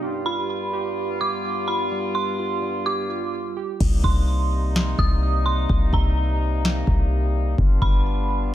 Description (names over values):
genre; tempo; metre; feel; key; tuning
hip hop, atmospheric cloud-rap; 127 BPM; 4/4; half-time; C minor; A4 = 438 Hz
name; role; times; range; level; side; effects
warm brass ensemble; sustained chords; 0.0-8.5 s; G2 to F4; -28 LUFS; left 2 dB; none
warbly lo-fi synth keys; arpeggios; 0.0-3.8 s; G3 to G4; -29 LUFS; right 7 dB; chorus, tape echo
dark detuned synth bell; melody; 0.3-8.5 s; Bb5 to Eb6; -28 LUFS; right 3 dB; chorus, tape echo
warm 808-style bass; bass; 3.8-8.5 s; G1 to C2; -21 LUFS; equal; none
booming analog drum machine; drums; 3.8-8.0 s; crash cymbal, kick drum, snare drum; -21 LUFS; equal; overdrive
room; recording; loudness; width
digital ambience; none; -20 LUFS; side -12 dB against mid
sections
0.0-3.8 A section; 3.8-8.5 B section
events
hi-hats muted 3.8-8.5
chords
0.0 G7; 3.8 Cm7; 7.6 G7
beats
| 0.03 0.50 0.97 1.44 | 1.92 2.39 2.86 3.33 | 3.80 4.28 4.75 5.22 | 5.69 6.17 6.64 7.11 | 7.58 8.06 8.53